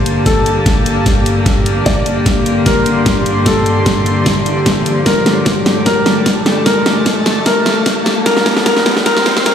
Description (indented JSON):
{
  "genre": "heavy wobble dubstep",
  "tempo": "150 BPM",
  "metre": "4/4",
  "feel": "half-time",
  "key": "G minor",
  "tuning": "A4 = 440 Hz",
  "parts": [
    { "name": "felt-muted upright piano", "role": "melody", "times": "0.0-9.5 s", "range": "A4 to D5", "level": "-18 LUFS", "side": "left 1 dB", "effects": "digital delay" },
    { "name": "rich chamber string section", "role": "sustained chords", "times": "0.0-9.5 s", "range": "G2 to Bb3", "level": "-17 LUFS", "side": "left 2 dB", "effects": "sidechain pumping" },
    { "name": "riser", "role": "sound effects", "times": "2.0-9.5 s", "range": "none", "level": "-22 LUFS", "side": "equal", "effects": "none" },
    { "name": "airy breathy pad", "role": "texture", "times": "0.0-9.5 s", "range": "G4 to C6", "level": "-20 LUFS", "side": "equal", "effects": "chorus, sidechain pumping" },
    { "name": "dubstep drum kit", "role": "drums", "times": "0.1-9.5 s", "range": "hi-hat, snare drum", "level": "-15 LUFS", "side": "equal", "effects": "none" },
    { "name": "electronic kick drum", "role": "drums", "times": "0.3-9.5 s", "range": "none", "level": "-17 LUFS", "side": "equal", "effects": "none" }
  ],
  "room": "moderate plate reverb, RT60 1.2 s, digital ambience",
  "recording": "played on a big sound system in a bare room, stone room reverb, high-pass filter",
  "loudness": "-10 LUFS",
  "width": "side -8 dB against mid",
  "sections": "0.0-9.5 A section",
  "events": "build-up 0.0-9.5; drum fill 0.0-9.5; filter sweep 0.0-9.5; riser 2.0-9.5",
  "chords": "0.0 Gm",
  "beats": "| 0.26 0.66 1.06 1.46 | 1.86 2.26 2.66 3.06 | 3.46 3.86 4.26 4.66 | 5.06 5.46 5.86 6.26 | 6.66 7.06 7.46 7.86 | 8.26 8.66 9.06 9.46"
}